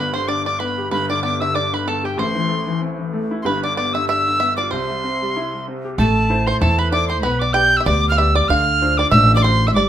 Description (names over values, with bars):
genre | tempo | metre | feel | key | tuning
celtic folk, Celtic reel | 190 BPM | 4/4 | swing 56% on 8ths | unclear | A4 = 440 Hz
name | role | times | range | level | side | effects
bright reedy wooden whistle | melody | 0.0-9.9 s | G5 to G6 | -19 LUFS | right 1 dB | none
bluegrass banjo | second line | 0.0-9.9 s | G4 to G5 | -24 LUFS | right 5 dB | none
clear upright piano | accompaniment | 0.0-9.9 s | G1 to D5 | -23 LUFS | left 2 dB | none
upright bass | bass | 6.0-9.9 s | G1 to E2 | -18 LUFS | equal | none
room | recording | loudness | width
moderate studio reverb, RT60 0.6 s | minimal, uncompressed stereo recording | -16 LUFS | side -10 dB against mid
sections
0.0-6.0 A section; 6.0-9.9 B section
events
none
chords
0.0 G; 2.2 Am; 3.4 G; 4.7 C; 6.0 Am; 7.2 G/B; 8.5 Dm7